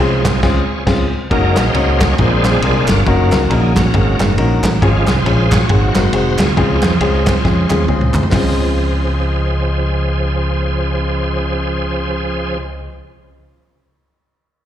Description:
uptempo gospel; 137 BPM; 4/4; swing 59% on 8ths; Db major; A4 = 436 Hz
warm grand piano; accompaniment; 0.0-12.9 s; Db2 to Db5; -19 LUFS; left 3 dB; plate reverb, slapback echo
bright tonewheel organ; sustained chords; 0.0-12.6 s; Db3 to Db5; -19 LUFS; right 2 dB; fast rotary speaker, overdrive, chorus vibrato, plate reverb
fingered electric bass; bass; 0.0-12.9 s; F1 to F2; -16 LUFS; equal
warm soul drum kit; drums; 0.2-8.4 s; crash cymbal, hi-hat, kick drum, ride cymbal, snare drum, toms; -18 LUFS; right 1 dB; slapback echo
group handclap; percussion; 0.3-8.6 s; -26 LUFS; right 3 dB
light reverb; live gig heard through the venue's PA, recital hall reverb; -12 LUFS; side -11 dB against mid
0.0-1.3 A section; 1.3-8.3 B section; 8.3-11.8 C section
tonewheel organ solo 0.0-1.3, 1.3-8.3; band accent 0.4-1.3; drum fill 7.4-8.3
0.0 Dbmaj7; 1.3 Gb6; 2.2 Bb7; 3.1 Ebm7/Gb; 3.9 Ab9sus4; 4.8 Db/Ab; 5.7 Ab7; 6.6 Dbmaj7
0.00 0.43 0.87 | 1.31 1.75 2.19 2.63 | 3.07 3.51 3.95 4.38 | 4.82 5.26 5.70 6.14 | 6.57 7.01 7.45 7.89 | 8.32 8.76 9.20 9.63 | 10.07 10.51 10.94 11.38

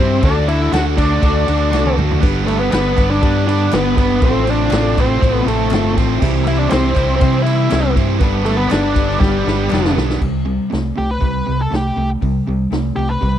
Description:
classic rock; 120 BPM; 4/4; straight; A4 = 440 Hz
octave-fuzz lead guitar; melody; 0.0-13.4 s; G3 to B4; -19 LUFS; left 1 dB; distortion
octave-fuzz lead guitar; second line; 0.0-9.9 s; G4 to F#5; -28 LUFS; right 4 dB; distortion
fingerpicked twelve-string acoustic guitar; accompaniment; 0.0-10.2 s; G2 to A4; -29 LUFS; left 7 dB
warm grand piano; accompaniment; 0.0-10.2 s; G3 to C5; -29 LUFS; right 4 dB
crunchy overdriven guitar; riff; 0.0-13.4 s; A2 to C5; -25 LUFS; left 12 dB; spring reverb
overdriven semi-hollow guitar; riff; 0.0-13.4 s; A2 to C5; -23 LUFS; right 11 dB
thick fuzz guitar; riff; 0.0-10.2 s; F2 to D4; -24 LUFS; equal; distortion
hollow-body short-scale fingered electric bass; bass; 0.0-13.4 s; F1 to C3; -19 LUFS; equal
vintage drum kit; drums; 0.2-13.3 s; crash cymbal, hi-hat, kick drum, ride cymbal, snare drum, toms; -19 LUFS; equal
group handclap; percussion; 0.7-9.8 s; -34 LUFS; left 10 dB
little or no reverb; dry, close 1970s-style studio recording; -13 LUFS; side -10 dB against mid
0.0-10.2 A section; 10.2-13.4 B section
drum fill 1.7-2.2, 9.2-10.2
0.2 D; 2.2 G; 4.2 F/A; 6.2 C; 8.2 G; 10.2 C5
| 0.23 0.73 1.23 1.73 | 2.22 2.72 3.22 3.72 | 4.22 4.72 5.21 5.71 | 6.21 6.71 7.21 7.71 | 8.21 8.71 9.21 9.71 | 10.21 10.71 11.21 11.71 | 12.22 12.72 13.22

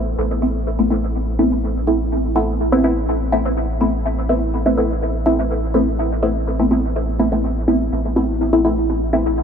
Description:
dub techno; 124 BPM; 4/4; straight; A minor; A4 = 440 Hz
filtered dub chord stab; stabs; 0.0-9.2 s; A3 to E4; -17 LUFS; equal; chorus, phaser, dub echo
soft dub sub bass; bass; 0.0-9.4 s; A1; -22 LUFS; equal
moderate huge ambient reverb, RT60 6.8 s; -16 LUFS; side -7 dB against mid
0.0-9.4 A section
0.0 Amadd9
| 0.18 0.66 1.15 1.63 | 2.12 2.60 3.08 3.57 | 4.05 4.53 5.02 5.50 | 5.99 6.47 6.95 7.44 | 7.92 8.40 8.89 9.37

